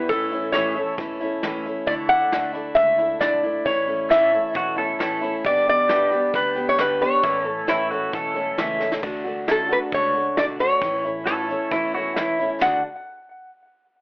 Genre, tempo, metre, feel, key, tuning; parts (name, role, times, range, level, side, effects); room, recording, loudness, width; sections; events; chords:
honky-tonk and classic country; 134 BPM; 4/4; straight; D major; A4 = 440 Hz
lap resonator guitar; melody; 0.0-12.8 s; A4 to F#5; -19 LUFS; equal
picked steel-string acoustic guitar; accompaniment; 0.0-12.8 s; G2 to A4; -27 LUFS; equal
pedal steel guitar; sustained chords; 0.0-12.6 s; D4 to E5; -32 LUFS; equal; wide subtle chorus
upright bass; bass; 0.1-12.8 s; E1 to D2; -42 LUFS; equal
soft brush drum kit; drums; 0.1-12.7 s; crash cymbal, hi-hat, kick drum, ride cymbal, snare drum, toms; -29 LUFS; equal
pedal steel guitar; second line; 4.6-12.8 s; D4 to E5; -24 LUFS; right 1 dB
wet spring reverb, RT60 1.0 s, small room ambience; cassette tape, telephone sound; -19 LUFS; side -28 dB against mid
0.0-9.0 A section; 9.0-12.6 B section; 12.6-14.0 C section
drum fill 8.8
0.1 A; 1.9 Dsus2; 3.7 A; 5.5 G; 7.2 A; 9.0 D; 10.8 A; 12.6 D